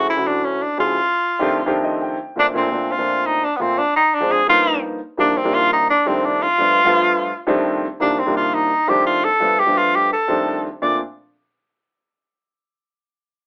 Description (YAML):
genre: jazz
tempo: 171 BPM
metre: 4/4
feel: straight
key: Bb major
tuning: A4 = 440 Hz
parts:
  - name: clear tenor saxophone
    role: melody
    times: 0.0-11.0 s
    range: Cb4 to D5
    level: -19 LUFS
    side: equal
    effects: none
  - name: warm concert grand piano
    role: accompaniment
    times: 0.0-11.0 s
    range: C2 to G5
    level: -23 LUFS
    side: equal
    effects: none
room: moderate studio reverb, RT60 0.5 s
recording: band playing live in one room, telephone sound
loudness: -18 LUFS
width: mono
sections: 0.0-5.2 A section; 5.2-10.8 B section; 10.8-12.2 C section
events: grand piano fill 1.7-2.4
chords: 0.0 Dmaj9#11; 1.0 F13; 2.4 Bbmaj9; 3.8 Dm7b5; 4.5 G7alt; 5.2 Cm11; 5.9 F13; 6.6 G9; 7.3 F13; 8.0 Cm11; 8.7 F13; 9.4 G9; 10.1 F13; 10.8 Bbmaj9